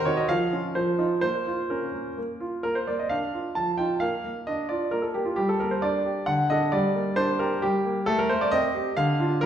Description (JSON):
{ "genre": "classical-period piano sonatina", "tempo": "132 BPM", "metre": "3/4", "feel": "straight", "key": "Bb major", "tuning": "A4 = 440 Hz", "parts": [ { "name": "clear baby grand piano", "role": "solo", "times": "0.0-9.5 s", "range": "D3 to A5", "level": "-23 LUFS", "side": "right 1 dB", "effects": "none" } ], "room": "wet recital hall reverb, RT60 1.3 s", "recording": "heard from further back in the room", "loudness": "-23 LUFS", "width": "side -9 dB against mid", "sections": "0.0-2.6 A section; 2.6-9.5 A section", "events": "none", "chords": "0.3 Db/F; 0.8 F5; 1.2 Bbm; 2.6 Bb; 3.6 F7; 4.0 Bb; 5.4 Gm; 6.3 D; 6.7 Gm; 8.1 Am7b5; 9.0 Dm" }